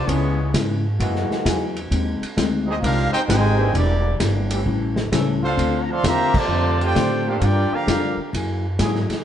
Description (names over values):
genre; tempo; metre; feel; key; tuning
jazz, big band swing; 131 BPM; 4/4; swing 66% on 8ths; unclear; A4 = 440 Hz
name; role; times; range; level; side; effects
clear trumpet section; melody; 0.0-8.2 s; Bb3 to C6; -23 LUFS; right 1 dB; none
clear trombone section; second line; 0.0-8.2 s; C3 to G4; -26 LUFS; right 2 dB; none
upright bass; bass; 0.0-9.1 s; E1 to A2; -22 LUFS; equal; none
hollow-body jazz guitar; accompaniment; 0.1-9.1 s; A2 to Bb4; -26 LUFS; left 4 dB; none
vintage drum kit; drums; 0.1-9.2 s; crash cymbal, hi-hat, kick drum, ride cymbal, snare drum; -25 LUFS; equal; none
warm trombone section; sustained chords; 1.0-9.0 s; E3 to A4; -30 LUFS; equal; none
room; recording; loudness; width
moderate echo chamber reverb, RT60 1.7 s; heard from further back in the room, nothing above 10.5 kHz; -18 LUFS; side -10 dB against mid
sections
0.0-9.2 A section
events
band accent 6.3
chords
0.1 Dbm7; 1.0 Gb9; 1.9 Abmaj7; 3.7 Em7b5; 4.7 A7; 5.6 Dm7; 7.4 Gm7; 8.3 Gb9